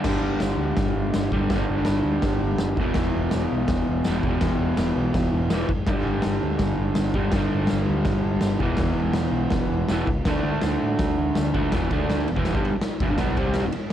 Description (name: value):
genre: garage rock duo or trio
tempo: 164 BPM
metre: 4/4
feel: straight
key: unclear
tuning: A4 = 441 Hz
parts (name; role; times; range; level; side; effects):
- crunchy overdriven guitar; riff; 0.0-13.8 s; E2 to D4; -24 LUFS; equal; none
- growling picked electric bass; bass; 0.0-13.7 s; E1 to A2; -28 LUFS; equal; overdrive
- oversized low-tuned drum kit; drums; 0.0-13.9 s; crash cymbal, kick drum, ride cymbal, snare drum; -25 LUFS; equal; none
- tambourine; percussion; 0.4-11.4 s; none; -46 LUFS; right 3 dB; none
room: light reverb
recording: cassette tape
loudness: -21 LUFS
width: side -10 dB against mid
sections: 0.1-11.7 A section; 11.7-13.9 B section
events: none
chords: 0.1 G5; 2.8 E5; 5.9 G5; 8.6 E5; 10.3 D5; 11.7 E5; 11.9 D5; 12.3 Em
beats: | 0.05 0.42 0.78 1.14 | 1.50 1.87 2.23 2.59 | 2.96 3.32 3.68 4.05 | 4.41 4.78 5.14 5.50 | 5.87 6.24 6.60 6.96 | 7.33 7.70 8.06 8.43 | 8.79 9.16 9.53 9.89 | 10.26 10.62 10.99 11.35 | 11.72 12.08 12.45 12.81 | 13.18 13.55 13.91